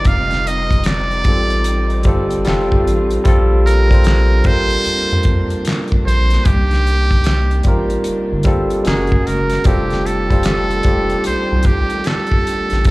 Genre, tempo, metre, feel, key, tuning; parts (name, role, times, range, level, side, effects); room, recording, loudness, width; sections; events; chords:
R&B, neo-soul; 75 BPM; 4/4; swing 63% on 16ths; A4 = 440 Hz
trumpet with metal mute; melody; 0.0-12.9 s; G4 to F5; -20 LUFS; right 2 dB
barky tine electric piano; accompaniment; 0.0-12.9 s; G3 to C5; -19 LUFS; equal; overdrive, slapback echo
warm symphonic string section; sustained chords; 0.0-12.9 s; C3 to A4; -29 LUFS; equal
damped 70s drum kit; drums; 0.0-12.9 s; handclaps, hi-hat, kick drum, snare drum; -16 LUFS; equal
rubbery square bass; bass; 0.1-12.9 s; F1 to F2; -16 LUFS; equal
little or no reverb; live gig heard through the venue's PA, club reverb; -13 LUFS; side -21 dB against mid
0.0-12.9 A section
0.0 F9; 3.3 Bbmaj9; 6.5 Cm9; 8.9 F#9; 9.7 F13